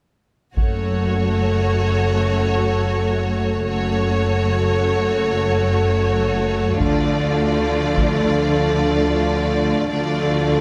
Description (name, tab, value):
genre	cinematic, epic orchestral film score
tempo	77 BPM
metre	4/4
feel	straight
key	unclear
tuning	A4 = 440 Hz
part	rich symphonic violin section	melody	0.6-10.6 s	C#5 to D5	-29 LUFS	equal	none
part	rich symphonic violin section	second line	0.6-10.6 s	F4 to F#4	-30 LUFS	equal	none
part	rich symphonic viola section	accompaniment	0.6-10.6 s	A3	-28 LUFS	equal	none
part	mellow French horn section	sustained chords	0.6-10.6 s	F3 to A4	-25 LUFS	equal	none
part	clear symphonic cello section	bass	0.6-10.6 s	F#2 to D3	-25 LUFS	equal	none
part	rich symphonic double bass section	bass	0.6-10.6 s	F#1 to D2	-25 LUFS	equal	none
part	taiko ensemble	drums	0.6-2.1, 6.8-8.3 s	none	-25 LUFS	equal	none
room	moderate scoring stage reverb, RT60 1.9 s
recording	none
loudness	-19 LUFS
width	mono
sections	0.6-10.6 A section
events	build-up 0.6-10.6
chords	0.6 F#m; 6.8 Dm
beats	| 0.57 1.35 2.13 2.91 | 3.69 4.47 5.25 6.03 | 6.80 7.58 8.36 9.14 | 9.92